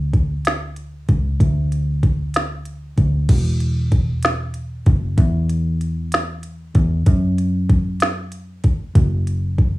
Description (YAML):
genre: six-eight pop ballad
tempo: 64 BPM (dotted quarters)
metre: 6/8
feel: straight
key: unclear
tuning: A4 = 439 Hz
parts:
  - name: vintage muted fingered electric bass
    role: bass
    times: 0.0-9.8 s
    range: E1 to F#2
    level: -20 LUFS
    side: equal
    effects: none
  - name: organic electronic drum kit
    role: drums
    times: 0.1-9.7 s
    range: crash cymbal, hi-hat, kick drum, snare drum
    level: -16 LUFS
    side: equal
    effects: overdrive, cassette tape
room: little or no reverb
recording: home recording on cassette, studio reverb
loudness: -17 LUFS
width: side -19 dB against mid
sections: 0.0-3.3 A section; 3.3-9.8 A section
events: none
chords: none